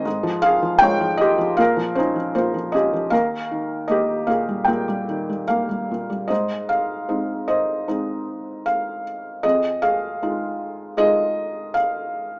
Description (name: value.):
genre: classical, lyrical solo piano.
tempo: 77 BPM.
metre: 4/4.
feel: rubato.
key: Ab major.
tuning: A4 = 440 Hz.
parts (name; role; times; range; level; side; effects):
felt-muted upright piano; solo; 0.0-12.4 s; Eb2 to G5; -19 LUFS; equal; none.
room: moderate studio reverb, RT60 0.7 s.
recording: small speaker sound.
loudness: -19 LUFS.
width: side -28 dB against mid.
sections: 0.0-6.3 A section; 6.3-12.4 B section.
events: none.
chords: 0.1 Db/Ab; 1.6 Bbm; 3.1 Eb; 6.3 Ab; 9.4 Fm7.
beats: | 0.06 0.82 1.60 2.36 | 3.12 3.90 4.68 5.49 | 6.30 7.09 7.88 8.67 | 9.44 10.22 10.98 11.74.